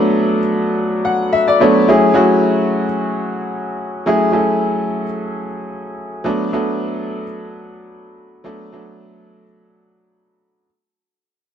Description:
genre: disco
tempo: free time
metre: none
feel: none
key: unclear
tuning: A4 = 437 Hz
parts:
  - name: warm grand piano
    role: solo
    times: 0.0-10.7 s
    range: F#3 to F#5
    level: -15 LUFS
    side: equal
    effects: none
room: light reverb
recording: nothing above 8.0 kHz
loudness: -14 LUFS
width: side -8 dB against mid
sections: 0.0-1.9 A section; 1.9-10.6 B section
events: grand piano fill 0.8-1.9; fade-out 1.9-10.6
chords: 0.0 Bm7; 1.9 F#m9; 6.3 Bm7

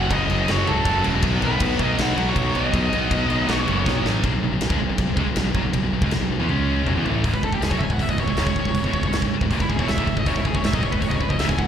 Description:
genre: heavy metal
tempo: 159 BPM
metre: 4/4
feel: straight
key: C# minor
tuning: A4 = 441 Hz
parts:
  - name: high-gain lead guitar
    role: melody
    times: 0.0-4.0, 7.3-11.7 s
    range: E4 to G#5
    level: -26 LUFS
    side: equal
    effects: distortion, slapback echo, tape echo
  - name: heavy high-gain guitar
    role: riff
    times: 0.0-11.7 s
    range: C#2 to C#4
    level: -26 LUFS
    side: left 11 dB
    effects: distortion, slapback echo
  - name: sludgy distorted guitar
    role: riff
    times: 0.0-11.7 s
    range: C#2 to C#4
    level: -26 LUFS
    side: right 9 dB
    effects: overdrive, slapback echo
  - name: fuzz fingered electric bass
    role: bass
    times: 0.0-11.7 s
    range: C#1 to E2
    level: -25 LUFS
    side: equal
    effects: overdrive
  - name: big rock drum kit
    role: drums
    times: 0.1-11.7 s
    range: crash cymbal, hi-hat, kick drum, ride cymbal, snare drum, toms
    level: -25 LUFS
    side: equal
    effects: none
room: little or no reverb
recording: live gig heard through the venue's PA, recital hall reverb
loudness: -19 LUFS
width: side -9 dB against mid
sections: 0.0-4.2 A section; 4.2-7.2 B section; 7.2-11.7 C section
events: half time 0.0-4.2; drum fill 3.9-4.2, 6.5-7.2; lead electric guitar solo 7.2-11.7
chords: 0.0 F#m; 1.2 B; 4.2 B5; 6.5 C#5; 6.9 B5; 7.2 C#m

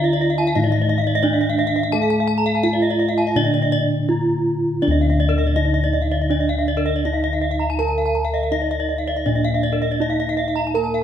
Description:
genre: Balinese gamelan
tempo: 82 BPM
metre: 4/4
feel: uneven beats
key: D pelog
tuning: A4 = 442 Hz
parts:
  - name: gamelan-type bronze metallophone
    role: melody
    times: 0.0-11.0 s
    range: D4 to Bb4-40c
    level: -22 LUFS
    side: right 3 dB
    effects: none
  - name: gamelan-type bronze metallophone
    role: accompaniment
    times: 0.0-4.8, 10.8-11.0 s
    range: D3 to Bb3-40c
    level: -25 LUFS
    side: left 2 dB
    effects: none
  - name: gamelan-type bronze metallophone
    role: arpeggios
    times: 0.0-10.9 s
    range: D5 to Bb5-40c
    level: -26 LUFS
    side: right 4 dB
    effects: none
  - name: gamelan-type bossed gongs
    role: bass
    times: 0.0-11.0 s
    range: D2 to Bb4-40c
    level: -22 LUFS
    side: left 2 dB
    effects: none
  - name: gamelan-type bronze metallophone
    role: arpeggios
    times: 0.1-11.0 s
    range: Bb4-40c to Bb5-40c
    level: -24 LUFS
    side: left 4 dB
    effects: none
room: moderate recital hall reverb, RT60 1.3 s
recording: none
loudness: -17 LUFS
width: side -9 dB against mid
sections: 0.0-4.8 A section; 4.8-11.0 B section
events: none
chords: none

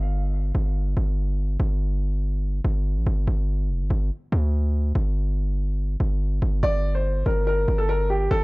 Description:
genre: hip hop, drill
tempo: 143 BPM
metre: 4/4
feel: half-time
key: G minor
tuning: A4 = 442 Hz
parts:
  - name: hard-hitting 808-style bass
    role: bass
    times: 0.0-8.4 s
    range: F1 to D2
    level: -22 LUFS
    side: equal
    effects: none
  - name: warm upright piano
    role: melody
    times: 6.6-8.4 s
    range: G4 to D5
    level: -25 LUFS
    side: equal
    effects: analog delay
room: little or no reverb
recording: dry, gritty hardware recording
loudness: -21 LUFS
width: side -25 dB against mid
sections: 0.0-8.4 A section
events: break 0.0-6.6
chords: none

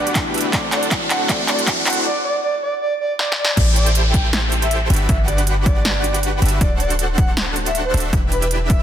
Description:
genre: future bass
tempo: 158 BPM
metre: 4/4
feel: swing 55% on 16ths, half-time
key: A dorian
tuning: A4 = 441 Hz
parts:
  - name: breathy flute-like synth lead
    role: melody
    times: 0.0-8.8 s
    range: B4 to G5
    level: -24 LUFS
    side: right 1 dB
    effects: chorus, sidechain pumping, tape echo
  - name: tine electric piano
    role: accompaniment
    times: 0.0-2.1 s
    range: A3 to F#5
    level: -26 LUFS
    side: left 2 dB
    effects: phaser, sidechain pumping, ping-pong delay
  - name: dense compressed supersaw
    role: riff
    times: 0.0-8.8 s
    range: D4 to G5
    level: -24 LUFS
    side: right 1 dB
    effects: sidechain pumping, low-pass filter
  - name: riser and downlifter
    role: sound effects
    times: 0.0-6.6 s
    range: none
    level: -25 LUFS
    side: equal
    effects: none
  - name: big-room dance drum kit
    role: drums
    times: 0.1-8.8 s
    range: crash cymbal, handclaps, hi-hat, snare drum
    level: -22 LUFS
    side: right 1 dB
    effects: overdrive, soft clipping on snare, high-pass filter on snare, high-pass filter on hats, high-pass filter on cymbals, high-pass filter on room
  - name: electronic kick drum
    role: drums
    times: 0.2-8.8 s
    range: none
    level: -19 LUFS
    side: equal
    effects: overdrive
  - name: warm 808-style bass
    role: bass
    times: 3.6-8.8 s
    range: D1 to A1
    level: -20 LUFS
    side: equal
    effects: sidechain pumping
room: light reverb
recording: dense, heavily limited modern master, high-pass filter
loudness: -16 LUFS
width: side -10 dB against mid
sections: 0.0-3.6 A section; 3.6-8.8 B section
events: build-up 0.0-3.6; drum fill 0.0-2.1, 3.2-3.6; riser 0.0-2.1; filter sweep on soft synth lead 0.0-3.6; drop 3.6-8.8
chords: 0.0 Gmaj7; 0.5 D7; 2.1 N.C.; 3.6 Am7; 4.9 Gmaj7; 6.6 D7; 8.1 Em7

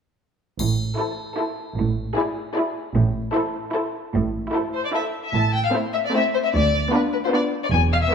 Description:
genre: cinematic, playful, whimsical film cue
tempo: 151 BPM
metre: 3/4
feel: straight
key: A minor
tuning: A4 = 439 Hz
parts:
  - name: muted chamber cello section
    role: bass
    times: 0.6-8.0 s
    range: D2 to A2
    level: -25 LUFS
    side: right 2 dB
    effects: none
  - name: muted chamber double bass section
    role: bass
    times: 0.6-8.0 s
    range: E1 to D2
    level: -24 LUFS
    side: right 3 dB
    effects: none
  - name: triangle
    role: percussion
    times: 0.6-1.3 s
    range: none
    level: -34 LUFS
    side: left 3 dB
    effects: none
  - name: muted chamber violin section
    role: melody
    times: 1.0-8.1 s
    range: B4 to A5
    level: -24 LUFS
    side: left 5 dB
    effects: none
  - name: muted studio violin section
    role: second line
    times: 1.0-8.1 s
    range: E4 to C5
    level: -29 LUFS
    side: left 4 dB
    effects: none
  - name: muted symphonic viola section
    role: accompaniment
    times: 1.0-8.1 s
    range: A3 to E4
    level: -25 LUFS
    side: right 1 dB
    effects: none
room: moderate scoring stage reverb, RT60 1.6 s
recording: minimal, uncompressed stereo recording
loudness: -20 LUFS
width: side -6 dB against mid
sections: 0.6-5.3 A section; 5.3-8.1 B section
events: none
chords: 0.6 Am; 6.5 Bdim/D

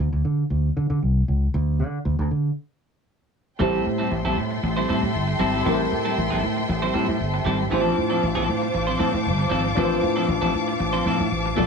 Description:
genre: disco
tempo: 117 BPM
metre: 4/4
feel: straight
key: D minor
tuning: A4 = 437 Hz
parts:
  - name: fingered electric bass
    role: bass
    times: 0.0-11.7 s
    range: G1 to D3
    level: -23 LUFS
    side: equal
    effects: none
  - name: clean electric guitar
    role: accompaniment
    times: 3.6-11.7 s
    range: F3 to C5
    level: -26 LUFS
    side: right 2 dB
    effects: none
  - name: tine electric piano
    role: accompaniment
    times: 3.6-11.7 s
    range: A3 to D5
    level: -27 LUFS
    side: left 2 dB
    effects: phaser
  - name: dark studio string section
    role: sustained chords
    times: 3.6-11.7 s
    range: Bb3 to D6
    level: -26 LUFS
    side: left 1 dB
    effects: none
room: light reverb, digital ambience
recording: none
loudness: -20 LUFS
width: side -5 dB against mid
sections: 0.0-3.6 A section; 3.6-11.7 B section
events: break 2.6-3.6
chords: 0.0 N.C.; 3.6 Am7; 7.7 Dm7

